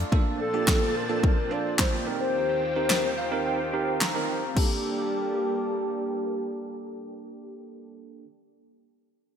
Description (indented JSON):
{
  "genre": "dance-pop",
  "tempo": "108 BPM",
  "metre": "4/4",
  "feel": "straight",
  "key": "G minor",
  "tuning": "A4 = 440 Hz",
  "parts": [
    { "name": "bell-like tine electric piano", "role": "accompaniment", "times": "0.0-8.3 s", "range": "Bb3 to Bb5", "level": "-31 LUFS", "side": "right 4 dB", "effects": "wide subtle chorus, sidechain pumping, low-pass filter" },
    { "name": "lush unison pad", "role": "sustained chords", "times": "0.0-7.5 s", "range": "Eb2 to A5", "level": "-33 LUFS", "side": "equal", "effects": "chorus, sidechain pumping, low-pass filter" },
    { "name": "pop drum kit", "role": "drums", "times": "0.1-4.7 s", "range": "crash cymbal, handclaps, kick drum, snare drum", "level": "-25 LUFS", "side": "equal", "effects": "gated reverb" },
    { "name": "hollow clarinet-like synth lead", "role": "melody", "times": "0.4-7.5 s", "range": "G4 to D5", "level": "-30 LUFS", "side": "left 2 dB", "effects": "chorus, low-pass filter, ping-pong delay" }
  ],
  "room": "moderate lush hall reverb, RT60 2.3 s",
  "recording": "bright 1980s-style digital production",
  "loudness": "-24 LUFS",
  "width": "side -8 dB against mid",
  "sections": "0.1-4.6 A section; 4.6-6.8 B section",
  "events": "kick muted 2.3-4.6; tine electric piano fill 2.9-4.6",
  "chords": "0.1 Bbmaj7; 2.1 Eb6; 4.6 Gmadd9"
}